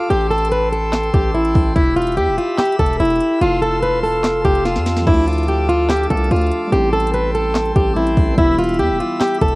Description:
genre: hip hop, trap.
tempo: 145 BPM.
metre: 4/4.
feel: half-time.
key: A minor.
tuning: A4 = 440 Hz.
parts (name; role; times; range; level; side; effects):
fingerpicked plugged-in swing-style acoustic guitar; melody; 0.0-9.6 s; E4 to B4; -17 LUFS; equal; low-pass filter, cassette tape.
chamber organ, principal chorus; sustained chords; 0.0-9.6 s; F4 to E6; -25 LUFS; equal; cassette tape.
distorted 808-style bass; bass; 0.1-9.6 s; E1 to F2; -20 LUFS; equal; distortion.
trap drum kit; drums; 0.1-9.5 s; crash cymbal, handclaps, hi-hat, kick drum, snare drum; -19 LUFS; equal; cassette tape.
muted felt-like synth keys; accompaniment; 5.0-9.6 s; E3 to E5; -26 LUFS; right 1 dB; chorus, low-pass filter, cassette tape.
room: little or no reverb.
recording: home recording on cassette, vinyl crackle.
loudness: -14 LUFS.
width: side -23 dB against mid.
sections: 0.0-9.6 A section.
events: drum fill 4.7-5.1.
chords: 0.1 Am7; 1.8 Em; 3.4 Fmaj7; 5.1 Dmadd9; 6.7 Am7; 8.4 Em.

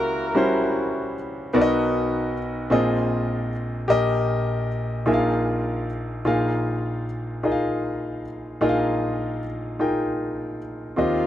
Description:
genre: gospel.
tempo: 51 BPM (dotted quarters).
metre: 6/8.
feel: straight.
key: unclear.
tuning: A4 = 440 Hz.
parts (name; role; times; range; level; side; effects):
warm horn section; melody; 0.0-1.1, 11.0-11.3 s; F3 to Bb4; -25 LUFS; equal; none.
clear grand piano; accompaniment; 0.0-11.3 s; Bb1 to G5; -22 LUFS; equal; none.
room: little or no reverb.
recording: dry, close 1970s-style studio recording.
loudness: -21 LUFS.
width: side -12 dB against mid.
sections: 0.0-6.3 A section; 6.3-11.0 B section.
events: none.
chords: 0.0 Gb7b9/Db; 1.5 Bmaj7; 2.7 Bb9sus4; 3.9 Eb/Bb; 5.1 Bb7sus4.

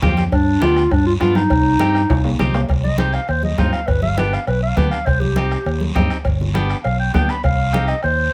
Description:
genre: latin, cumbia.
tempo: 202 BPM.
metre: 4/4.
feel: straight.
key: C harmonic minor.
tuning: A4 = 440 Hz.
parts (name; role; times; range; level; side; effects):
clean electric guitar; accompaniment; 0.0-7.9 s; B3 to G4; -28 LUFS; equal; none.
fingered electric bass; bass; 0.0-8.3 s; G1 to G2; -22 LUFS; equal; none.
bombo; percussion; 0.0-8.2 s; none; -24 LUFS; equal; none.
congas; percussion; 0.0-8.2 s; none; -26 LUFS; equal; none.
cowbell and timbales; percussion; 0.0-8.2 s; none; -30 LUFS; equal; none.
guiro; percussion; 0.0-8.3 s; none; -38 LUFS; equal; none.
warm clarinet; melody; 0.3-8.3 s; D4 to B5; -22 LUFS; equal; none.
room: light reverb.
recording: none.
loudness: -17 LUFS.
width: mono.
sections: 0.0-2.7 A section; 2.7-8.3 B section.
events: drum fill 2.1-2.7; clarinet solo 2.7-8.3.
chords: 0.3 G7; 1.5 Cm; 3.9 G; 5.1 Cm; 6.3 G; 7.4 Cm.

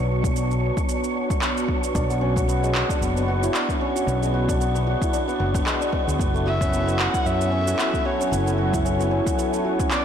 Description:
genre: organic downtempo.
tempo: 113 BPM.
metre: 4/4.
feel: swing 56% on 16ths.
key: B dorian.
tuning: A4 = 440 Hz.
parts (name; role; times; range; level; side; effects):
warm analog pad; sustained chords; 0.0-10.0 s; F#3 to G#5; -28 LUFS; right 2 dB; lush chorus, sidechain pumping.
mellow fretless electric bass; bass; 0.0-9.2 s; F#1 to F#2; -24 LUFS; equal; sidechain pumping.
wind-like tuned noise texture; texture; 0.0-10.0 s; D4 to C#6; -32 LUFS; left 2 dB; built-in reverb.
electronic kick drum; drums; 0.2-9.9 s; none; -26 LUFS; equal; overdrive.
electronic shaker and handclaps; drums; 0.2-10.0 s; none; -29 LUFS; right 1 dB; overdrive.
santur; arpeggios; 1.9-10.0 s; G#3 to F#4; -25 LUFS; left 1 dB; ping-pong delay.
warm kamancheh; melody; 6.5-10.0 s; C#5 to F#5; -28 LUFS; left 1 dB; ping-pong delay.
room: moderate concert hall reverb, RT60 2.5 s.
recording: blown-out, overdriven recording, overdrive.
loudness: -20 LUFS.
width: side -8 dB against mid.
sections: 0.0-10.0 A section.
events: none.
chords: 0.0 Bm69; 6.2 F#m7.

